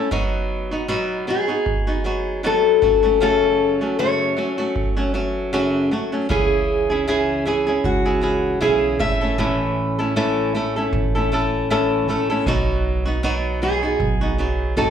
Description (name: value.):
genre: acoustic pop.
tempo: 78 BPM.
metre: 4/4.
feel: swing 55% on 16ths.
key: unclear.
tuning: A4 = 441 Hz.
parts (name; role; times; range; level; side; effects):
flamenco guitar; accompaniment; 0.0-14.9 s; F#2 to A4; -21 LUFS; equal; plate reverb, slapback echo.
electronic kick drum; drums; 0.1-14.2 s; none; -26 LUFS; right 2 dB; none.
fingerpicked steel-string acoustic guitar; melody; 1.3-14.9 s; F#4 to E5; -20 LUFS; left 3 dB; plate reverb, slapback echo.
upright bass; bass; 6.3-14.9 s; G#1 to C#2; -26 LUFS; right 2 dB; none.
room: moderate club reverb, RT60 0.5 s.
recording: live gig heard through the venue's PA, club reverb.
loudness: -18 LUFS.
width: side -8 dB against mid.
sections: 0.0-14.9 A section.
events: none.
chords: 0.1 B; 2.8 F#m; 6.3 C#m; 9.0 A; 12.5 B.